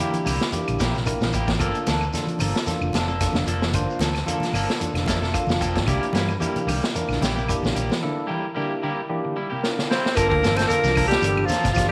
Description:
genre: afrobeat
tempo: 112 BPM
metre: 4/4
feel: swing 53% on 16ths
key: G dorian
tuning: A4 = 440 Hz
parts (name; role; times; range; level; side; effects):
- barky tine electric piano; accompaniment; 0.0-11.9 s; Bb3 to G5; -31 LUFS; equal; none
- clean electric guitar; arpeggios; 0.0-11.8 s; C3 to E3; -34 LUFS; equal; harmonic tremolo
- electric guitar at the edge of break-up; stabs; 0.0-11.7 s; F3 to A4; -31 LUFS; equal; subtle chorus
- congas; percussion; 0.0-11.9 s; none; -35 LUFS; equal; none
- vintage drum kit; drums; 0.1-11.9 s; hi-hat, kick drum, snare drum; -28 LUFS; equal; none
- shekere; percussion; 0.1-11.9 s; none; -38 LUFS; equal; none
- vintage muted fingered electric bass; bass; 0.3-11.9 s; F1 to G2; -29 LUFS; equal; none
- claves; percussion; 0.3-11.9 s; none; -39 LUFS; equal; none
- bright alto saxophone; melody; 9.9-11.9 s; F4 to C5; -24 LUFS; equal; none
- raspy tenor saxophone; second line; 9.9-11.9 s; F3 to C4; -32 LUFS; equal; none
room: wet echo chamber reverb, RT60 1.6 s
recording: none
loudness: -23 LUFS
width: mono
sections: 0.0-10.2 A section; 10.2-11.9 B section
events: tine electric piano fill 4.8-5.9; drum fill 9.6-10.2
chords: 0.0 C7; 1.6 Gm9; 5.9 C7; 10.2 Gm9

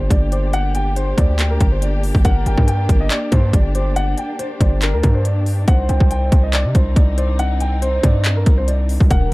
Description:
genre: hip hop, trap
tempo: 140 BPM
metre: 4/4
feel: half-time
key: unclear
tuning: A4 = 443 Hz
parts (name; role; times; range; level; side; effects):
- dark baby grand piano; melody; 0.0-9.3 s; Bb4 to G5; -25 LUFS; equal; low-pass filter
- dark symphonic string section; sustained chords; 0.0-9.3 s; Eb3 to G4; -28 LUFS; left 1 dB; none
- distorted 808-style bass; bass; 0.0-9.3 s; Eb1 to C3; -17 LUFS; equal; distortion
- trap drum kit; drums; 0.1-9.2 s; handclaps, hi-hat, kick drum; -16 LUFS; equal; overdrive
- warm velvety synth lead; second line; 0.3-9.3 s; Bb4 to D5; -29 LUFS; equal; chorus, tape echo
room: little or no reverb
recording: dark, warm production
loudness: -14 LUFS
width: side -21 dB against mid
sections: 0.0-9.3 A section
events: none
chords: 0.0 Gm; 5.7 Cmadd9

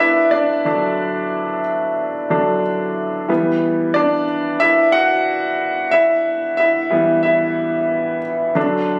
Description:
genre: pop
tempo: 91 BPM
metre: 4/4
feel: straight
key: E minor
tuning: A4 = 441 Hz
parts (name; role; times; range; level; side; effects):
- clear baby grand piano; solo; 0.0-9.0 s; D3 to F#5; -18 LUFS; equal; none
room: light reverb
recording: recorded on a phone in the room, studio reverb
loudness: -18 LUFS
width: mono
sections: 0.0-3.3 A section; 3.3-9.0 B section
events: grand piano solo 0.0-3.3, 3.3-9.0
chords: 0.0 Bm/D; 3.3 Em

